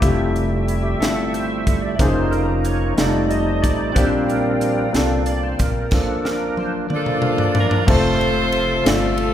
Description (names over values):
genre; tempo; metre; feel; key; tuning
slow gospel; 61 BPM (dotted quarters); 6/8; straight; F major; A4 = 440 Hz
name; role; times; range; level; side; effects
warm concert grand piano; accompaniment; 0.0-9.3 s; Bb2 to D5; -22 LUFS; left 3 dB; none
bright tonewheel organ; sustained chords; 0.0-9.3 s; C3 to F5; -22 LUFS; right 2 dB; fast rotary speaker, overdrive, chorus vibrato
small flute group; sustained chords; 0.0-5.9 s; Db4 to Bb5; -32 LUFS; right 1 dB; none
upright bass; bass; 0.0-9.3 s; F1 to C2; -24 LUFS; equal; none
crisp fusion drum kit; drums; 0.0-9.3 s; crash cymbal, hi-hat, kick drum, ride cymbal, snare drum, toms; -21 LUFS; equal; none
edgy saxophone section; melody; 6.9-9.3 s; C4 to C5; -21 LUFS; equal; none
room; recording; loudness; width
moderate concert hall reverb, RT60 2.3 s; recorded in a church or concert hall; -16 LUFS; side -10 dB against mid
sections
0.0-7.9 A section; 7.9-9.3 B section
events
tonewheel organ solo 0.0-7.9; drum fill 5.9-7.9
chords
0.0 Fmaj9; 2.0 Db69/F; 3.0 F7; 4.0 Bb69; 5.9 Bbmaj7/F; 7.9 F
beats
| 0.02 1.01 | 1.99 2.98 | 3.96 4.94 | 5.92 6.90 | 7.88 8.86